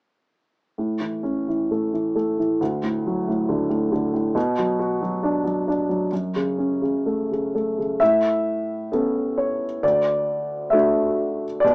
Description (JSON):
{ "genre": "classical, lyrical solo piano", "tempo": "67 BPM", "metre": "4/4", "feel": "rubato", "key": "A major", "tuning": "A4 = 438 Hz", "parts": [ { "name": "dark baby grand piano", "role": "solo", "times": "0.8-11.7 s", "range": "D2 to E5", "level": "-20 LUFS", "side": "equal", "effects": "none" } ], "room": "moderate studio ambience, RT60 0.5 s", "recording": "small speaker sound", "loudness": "-20 LUFS", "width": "side -26 dB against mid", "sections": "0.8-8.0 A section; 8.0-11.7 B section", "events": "none", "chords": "0.8 A; 2.6 D; 4.4 Bm; 6.1 F#m; 8.0 Aadd9; 9.8 D" }